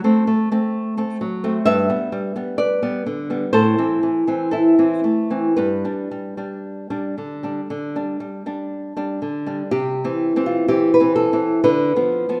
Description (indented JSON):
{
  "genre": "romantic duo for nylon-string guitar and classical guitar",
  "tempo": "55-66 BPM",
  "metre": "4/4",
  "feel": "rubato",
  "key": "C major",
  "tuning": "A4 = 440 Hz",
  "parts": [
    { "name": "nylon-string guitar", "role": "accompaniment", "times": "0.0-12.4 s", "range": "G2 to F#5", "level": "-21 LUFS", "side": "equal", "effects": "none" },
    { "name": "nylon-string guitar", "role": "melody", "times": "9.7-12.4 s", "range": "F4 to B4", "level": "-22 LUFS", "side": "equal", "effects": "none" }
  ],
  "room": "wet recital hall reverb, RT60 1.5 s",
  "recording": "none",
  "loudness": "-20 LUFS",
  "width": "mono",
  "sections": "0.0-9.7 A section; 9.7-12.4 B section",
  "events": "none",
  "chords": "0.0 F#dim7; 1.7 G; 3.5 Am; 5.6 G; 9.7 C; 11.6 Bdim/D"
}